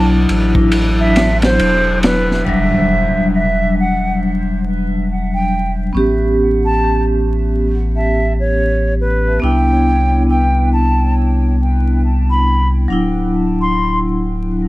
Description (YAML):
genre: trip hop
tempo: 69 BPM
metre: 4/4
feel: swing 60% on 16ths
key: E minor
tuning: A4 = 440 Hz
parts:
  - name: hollow concert flute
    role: melody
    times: 0.0-14.0 s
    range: B4 to C6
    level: -19 LUFS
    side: right 1 dB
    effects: dub echo
  - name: vibraphone with medium hard mallets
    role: accompaniment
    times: 0.0-14.7 s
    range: F#3 to G4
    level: -17 LUFS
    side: left 1 dB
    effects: tremolo, tape echo
  - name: warm sub bass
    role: bass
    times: 0.0-14.7 s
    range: D1 to C2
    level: -16 LUFS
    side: equal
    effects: none
  - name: crunchy breakbeat drum kit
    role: drums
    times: 0.3-2.5 s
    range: kick drum, ride cymbal, snare drum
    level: -19 LUFS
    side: equal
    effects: none
  - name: impact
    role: sound effects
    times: 2.5-5.9 s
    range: none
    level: -26 LUFS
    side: equal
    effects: none
room: little or no reverb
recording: echo-heavy mix, vinyl crackle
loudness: -12 LUFS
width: side -18 dB against mid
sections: 0.0-2.5 A section; 2.5-14.7 B section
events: kick drops out 0.7-2.5; impact 2.5-5.9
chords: 0.0 Dadd9; 2.5 Em7; 5.9 A7; 9.4 Cmaj7; 12.9 Dadd9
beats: 0.73 1.60 | 2.47 3.34 4.21 5.08 | 5.95 6.82 7.69 8.56 | 9.43 10.30 11.16 12.04 | 12.90 13.77 14.64